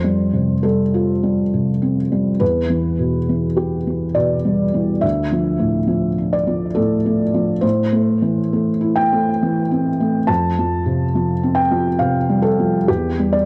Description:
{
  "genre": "neoclassical minimalist piano",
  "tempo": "69 BPM",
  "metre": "3/4",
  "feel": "rubato",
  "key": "unclear",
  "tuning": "A4 = 443 Hz",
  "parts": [
    { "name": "felt-muted upright piano", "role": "solo", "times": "0.0-13.5 s", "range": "D2 to A5", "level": "-18 LUFS", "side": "equal", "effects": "cassette tape" }
  ],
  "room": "light reverb",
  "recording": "home recording on cassette",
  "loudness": "-18 LUFS",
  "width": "mono",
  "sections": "0.0-13.5 A section",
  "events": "none",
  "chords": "0.0 Fadd9; 2.4 Em; 5.0 Dm; 7.6 Am; 10.3 Fadd9; 12.9 Em",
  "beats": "0.66 1.54 | 2.41 3.29 4.16 | 5.04 5.91 6.78 | 7.63 8.52 9.42 | 10.29 11.14 12.00 | 12.88"
}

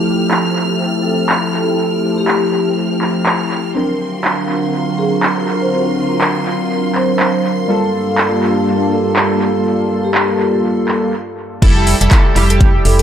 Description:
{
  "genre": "deep house",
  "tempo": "122 BPM",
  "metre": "4/4",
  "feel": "swing 58% on 16ths",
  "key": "F major",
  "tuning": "A4 = 441 Hz",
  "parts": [
    { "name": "soft string machine", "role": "sustained chords", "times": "0.0-13.0 s", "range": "G2 to E5", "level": "-23 LUFS", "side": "equal", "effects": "phaser, ensemble chorus, sidechain pumping" },
    { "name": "chorused polysynth", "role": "stabs", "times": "0.0-13.0 s", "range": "F3 to A#4", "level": "-17 LUFS", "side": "equal", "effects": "sidechain pumping, dub echo" },
    { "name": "rich studio violin section", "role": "texture", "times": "0.0-11.1 s", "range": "C6 to F6", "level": "-27 LUFS", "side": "equal", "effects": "sidechain pumping" },
    { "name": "warbly tape-like pad", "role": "texture", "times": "0.0-11.1 s", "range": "D4 to A#5", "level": "-26 LUFS", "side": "equal", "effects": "chorus, built-in reverb, sidechain pumping" },
    { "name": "deep house drum kit", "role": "drums", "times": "0.3-13.0 s", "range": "crash cymbal, handclaps, hi-hat", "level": "-18 LUFS", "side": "right 1 dB", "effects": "overdrive, low-pass filter on hats, low-pass filter on snare, low-pass filter on cymbals, tape echo" },
    { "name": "vibraphone with soft mallets", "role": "melody", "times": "1.0-13.0 s", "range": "G4 to C5", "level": "-21 LUFS", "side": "equal", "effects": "analog delay" },
    { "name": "soft round pluck", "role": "arpeggios", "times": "11.6-13.0 s", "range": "E4 to A4", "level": "-25 LUFS", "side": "left 2 dB", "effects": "chorus, sidechain pumping, analog delay" },
    { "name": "organ-like FM bass", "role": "bass", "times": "11.6-13.0 s", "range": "F1", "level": "-14 LUFS", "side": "equal", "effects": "sidechain pumping" },
    { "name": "electronic kick drum", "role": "drums", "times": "11.6-12.7 s", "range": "none", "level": "-11 LUFS", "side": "equal", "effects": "overdrive" }
  ],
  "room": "light reverb, digital ambience",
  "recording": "echo-heavy mix",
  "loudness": "-12 LUFS",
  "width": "side -9 dB against mid",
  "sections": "0.0-11.6 A section; 11.6-13.0 B section",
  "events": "filter sweep on analog polysynth 0.0-11.6; stop 11.1-11.6; drop 11.6-13.0",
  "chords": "0.0 Fmaj9; 3.8 D7alt; 7.7 Gm9; 11.6 Fmaj9",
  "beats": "0.31 0.80 1.30 | 1.79 2.28 2.77 3.26 | 3.75 4.25 4.74 5.23 | 5.72 6.21 6.71 7.20 | 7.69 8.18 8.67 9.16 | 9.66 10.15 10.64 11.13 | 11.62 12.12 12.61"
}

